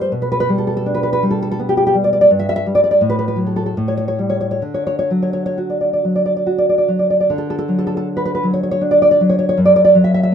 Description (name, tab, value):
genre	romantic piece for solo classical guitar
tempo	62-86 BPM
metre	3/4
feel	rubato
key	D major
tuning	A4 = 440 Hz
part	nylon-string guitar	solo	0.0-10.3 s	F#2 to E5	-14 LUFS	equal	none
room	moderate small room reverb, RT60 0.5 s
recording	minimal, uncompressed stereo recording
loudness	-13 LUFS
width	side -8 dB against mid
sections	0.0-7.3 A section; 7.3-10.3 B section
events	none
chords	0.1 G/B; 2.3 N.C.; 3.0 F#madd11/A; 3.8 A7; 4.6 D; 9.6 D/F#